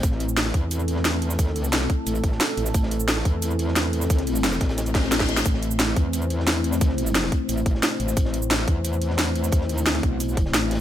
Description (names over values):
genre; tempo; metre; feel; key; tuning
dark technical drum and bass; 177 BPM; 4/4; straight; A minor; A4 = 441 Hz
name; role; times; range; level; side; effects
dark analog pad; sustained chords; 0.0-10.8 s; A3 to C5; -28 LUFS; left 2 dB; chorus, phaser, sidechain pumping
metallic wobble bass; bass; 0.0-10.8 s; A1 to E2; -25 LUFS; equal; chorus, tube saturation
crunchy breakbeat drum kit; drums; 0.0-10.8 s; hi-hat, snare drum; -36 LUFS; equal; high-pass filter on hats, high-pass filter on snare, high-pass filter on room
drum and bass drum kit; drums; 0.0-10.8 s; cabasa, hi-hat, snare drum; -25 LUFS; equal; overdrive
electronic kick drum; drums; 0.0-10.4 s; none; -22 LUFS; equal; none
reverse cymbal; sound effects; 4.9-5.5 s; none; -34 LUFS; left 6 dB; none
room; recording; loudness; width
little or no reverb; none; -20 LUFS; side -11 dB against mid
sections
0.0-10.8 A section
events
reverse cymbal 4.9-5.5; drum fill 4.9-5.5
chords
0.0 Am